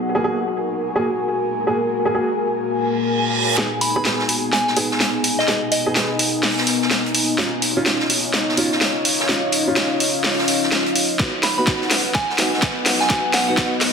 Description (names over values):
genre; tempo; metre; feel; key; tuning
bass house; 126 BPM; 4/4; swing 61% on 16ths; G# dorian; A4 = 440 Hz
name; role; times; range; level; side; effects
deep dark ambient pad; sustained chords; 0.0-13.9 s; A#3 to F#5; -26 LUFS; left 3 dB; chorus, built-in reverb, sidechain pumping
airy breathy pad; texture; 0.0-13.9 s; B3 to G#5; -24 LUFS; left 1 dB; chorus, sidechain pumping
dark grand piano; stabs; 0.1-13.7 s; A#3 to G#4; -24 LUFS; right 1 dB; sidechain pumping, dub echo
reverse cymbal; sound effects; 2.9-3.6 s; none; -22 LUFS; right 6 dB; none
garage drum kit; drums; 3.6-13.9 s; hi-hat, snare drum; -20 LUFS; equal; high-pass filter on snare, high-pass filter on hats, high-pass filter on room
vintage drum kit; drums; 3.6-13.9 s; hi-hat, snare drum; -26 LUFS; right 2 dB; sidechain pumping on hats, high-pass filter on hats, high-pass filter on snare, high-pass filter on room
soft synth bell; melody; 3.8-6.1, 11.4-13.5 s; D#5 to B5; -24 LUFS; right 1 dB; chorus, dub echo
electronic kick drum; drums; 11.2-13.7 s; none; -22 LUFS; equal; none
room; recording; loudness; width
wet digital room reverb, RT60 1.3 s, studio reverb; dense, heavily limited modern master, high-pass filter; -17 LUFS; side -6 dB against mid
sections
0.0-3.6 A section; 3.6-13.9 B section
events
filter sweep on ambient pad 0.0-3.6; reverse cymbal 2.9-3.6; build-up 3.6-13.9; drum fill 3.6-13.9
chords
0.0 F#add9; 3.6 G#m; 7.4 C#add9; 11.2 B